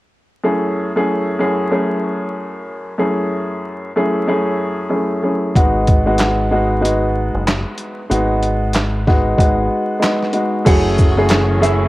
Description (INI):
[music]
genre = hip hop, boom-bap hip-hop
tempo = 94 BPM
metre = 4/4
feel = swing 60% on 16ths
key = F# dorian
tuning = A4 = 440 Hz
[part]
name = dark upright piano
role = accompaniment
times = 0.4-11.9 s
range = F#2 to G#4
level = -16 LUFS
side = equal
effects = cassette tape, high-pass filter, low-pass filter
[part]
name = deep dub fingered electric bass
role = bass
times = 5.6-11.9 s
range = F#1 to G#1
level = -19 LUFS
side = equal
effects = none
[part]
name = boom bap sampler-style drum kit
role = drums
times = 5.6-11.8 s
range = crash cymbal, handclaps, hi-hat, kick drum, shaker, snare drum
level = -16 LUFS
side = equal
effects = cassette tape
[part]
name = nylon-string guitar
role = melody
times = 10.7-11.9 s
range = E4 to F#5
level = -20 LUFS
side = right 4 dB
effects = high-pass filter, low-pass filter, cassette tape, analog delay
[part]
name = warm symphonic string section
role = sustained chords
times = 10.7-11.9 s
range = E3 to F#4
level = -26 LUFS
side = right 1 dB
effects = high-pass filter, low-pass filter
[sound]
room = light reverb, small room ambience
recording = home recording on cassette, vinyl crackle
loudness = -14 LUFS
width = side -17 dB against mid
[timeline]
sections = 0.4-10.7 A section; 10.7-11.9 B section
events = none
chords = 0.4 F#m7; 5.6 G#m7; 10.7 F#m7